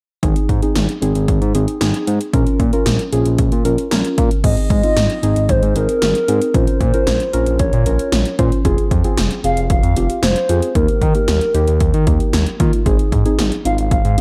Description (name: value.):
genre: synth-pop.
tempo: 114 BPM.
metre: 4/4.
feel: straight.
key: Ab major.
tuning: A4 = 438 Hz.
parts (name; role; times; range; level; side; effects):
muted felt-like synth keys; accompaniment; 0.2-14.2 s; Bb3 to C5; -23 LUFS; equal; chorus.
smooth synth bass; bass; 0.2-14.2 s; F1 to Eb3; -20 LUFS; equal; none.
80s electronic pad drums; drums; 0.2-14.2 s; crash cymbal, hi-hat, kick drum, snare drum; -20 LUFS; equal; overdrive.
hollow clarinet-like synth lead; melody; 4.4-14.2 s; Bb4 to F5; -22 LUFS; equal; chorus, analog delay.
room: moderate plate reverb, RT60 1.8 s.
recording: dreamy mix soaked in reverb.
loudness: -16 LUFS.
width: mono.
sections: 0.2-4.4 A section; 4.4-14.2 B section.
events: none.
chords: 0.2 Ab; 2.3 Bbm; 4.4 Ab; 6.5 Bbmadd9; 8.7 Fmadd9; 10.8 Eb; 12.9 Ab.